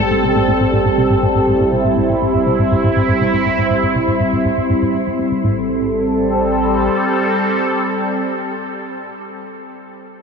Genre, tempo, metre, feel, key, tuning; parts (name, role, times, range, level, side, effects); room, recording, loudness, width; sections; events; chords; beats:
ambient; 121 BPM; 4/4; straight; A minor; A4 = 440 Hz
sweeping resonant pad; sustained chords; 0.0-9.7 s; G3 to A4; -16 LUFS; equal; chorus
concert harp; arpeggios; 0.0-0.7 s; barely audible
plucky analog bass; riff; 0.0-5.7 s; A2 to C4; -20 LUFS; equal; ping-pong delay
warm sub bass; bass; 0.0-6.9 s; A1; -30 LUFS; equal
wind-like tuned noise texture; texture; 0.0-5.5 s; G3 to C5; -26 LUFS; equal; built-in reverb
wet huge ambient reverb, RT60 7.2 s; dreamy mix soaked in reverb; -14 LUFS; side -5 dB against mid
0.0-5.4 A section; 5.4-9.4 B section
fade-out on sub bass 0.0-5.4
0.0 Am7
0.48 0.98 | 1.47 1.97 2.46 2.96 | 3.46 3.95 4.45 4.94 | 5.44 5.94 6.43 6.93 | 7.42 7.92 8.41 8.91